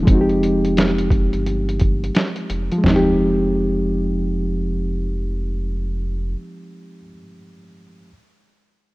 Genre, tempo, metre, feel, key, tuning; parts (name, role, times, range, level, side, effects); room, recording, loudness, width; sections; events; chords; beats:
lo-fi hip hop; 87 BPM; 4/4; swing 63% on 16ths; F minor; A4 = 442 Hz
reed electric piano; accompaniment; 0.0-8.1 s; F3 to G4; -20 LUFS; equal; cassette tape, low-pass filter
saturated sub bass; bass; 0.0-6.4 s; F1 to G1; -24 LUFS; equal
lo-fi sampler-style drum kit; drums; 0.1-3.1 s; hi-hat, kick drum, snare drum, toms; -18 LUFS; equal
light reverb, digital ambience; rough home demo mix, cassette tape; -17 LUFS; side -20 dB against mid
0.0-2.8 A section; 2.8-5.6 B section
0.1 Fm9
| 0.08 0.77 1.46 2.15 | 2.83 3.52 4.21 4.90